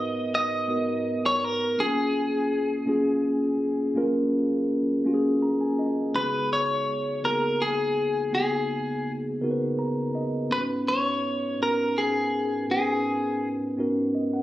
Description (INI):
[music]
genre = R&B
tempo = 55 BPM (dotted quarters)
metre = 6/8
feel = straight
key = unclear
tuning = A4 = 443 Hz
[part]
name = clean electric guitar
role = melody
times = 0.0-13.5 s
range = G#4 to D#5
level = -26 LUFS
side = left 1 dB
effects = slapback echo, plate reverb
[part]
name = mellow tine electric piano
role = accompaniment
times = 0.0-14.4 s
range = F#2 to A#5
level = -25 LUFS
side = equal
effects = slow stereo tremolo
[sound]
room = moderate studio reverb, RT60 0.7 s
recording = recorded on a phone in the room, club reverb, compression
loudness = -23 LUFS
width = side -14 dB against mid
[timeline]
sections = 0.0-6.1 A section; 6.1-14.4 B section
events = tine electric piano fill 5.0-6.1, 9.4-10.5, 13.8-14.4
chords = 0.0 G#m9; 1.8 F#maj9; 6.1 C#13sus4; 10.5 G#m11